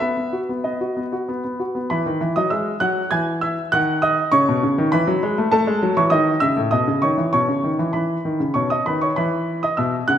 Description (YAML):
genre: classical-period piano sonatina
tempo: 99 BPM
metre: 3/4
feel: straight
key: E major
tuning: A4 = 442 Hz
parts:
  - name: clear grand piano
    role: solo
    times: 0.0-10.2 s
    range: A2 to G#6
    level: -18 LUFS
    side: equal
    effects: none
room: wet recital hall reverb, RT60 1.8 s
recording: minimal, uncompressed stereo recording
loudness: -18 LUFS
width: side -9 dB against mid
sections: 0.0-1.9 A section; 1.9-10.2 B section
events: none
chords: 0.0 B; 1.9 E; 3.7 B/D# (rootless); 4.9 E; 5.5 A; 7.3 E5/B; 8.6 B; 9.2 E5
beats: | 0.01 0.65 1.28 | 1.90 2.51 3.12 | 3.72 4.33 4.92 | 5.52 6.12 6.72 | 7.33 7.95 8.56 | 9.17 9.78